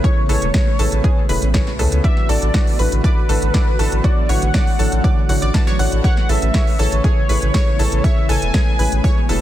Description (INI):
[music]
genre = progressive house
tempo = 120 BPM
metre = 4/4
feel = straight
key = A major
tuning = A4 = 442 Hz
[part]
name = warm velvety synth lead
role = melody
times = 0.0-9.3 s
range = B4 to G#5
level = -25 LUFS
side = equal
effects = chorus, tape echo
[part]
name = shimmering ambient pad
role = sustained chords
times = 0.0-9.4 s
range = C#3 to F#4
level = -26 LUFS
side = equal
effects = chorus, built-in reverb, phaser, sidechain pumping
[part]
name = analog pluck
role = arpeggios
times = 0.0-9.4 s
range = F#4 to A5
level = -27 LUFS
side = equal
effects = chorus, sidechain pumping, dub echo
[part]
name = felt-muted upright piano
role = stabs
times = 0.0-9.4 s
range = A2 to C#5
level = -25 LUFS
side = left 2 dB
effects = sidechain pumping, dub echo
[part]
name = deep house drum kit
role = drums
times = 0.0-9.4 s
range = hi-hat, snare drum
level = -26 LUFS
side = right 1 dB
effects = sidechain pumping on hats, sidechain pumping on cymbals
[part]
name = electronic kick drum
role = drums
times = 0.0-9.1 s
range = none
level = -16 LUFS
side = equal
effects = none
[part]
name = saturated sub bass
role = bass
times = 0.3-9.4 s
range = E1 to C#2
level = -18 LUFS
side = equal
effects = sidechain pumping
[sound]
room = little or no reverb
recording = dense, heavily limited modern master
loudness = -14 LUFS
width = side -13 dB against mid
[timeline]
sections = 0.0-9.4 A section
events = none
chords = 0.0 Amaj9; 2.0 Bm7/A; 4.0 Dmaj7/A; 6.0 Amaj9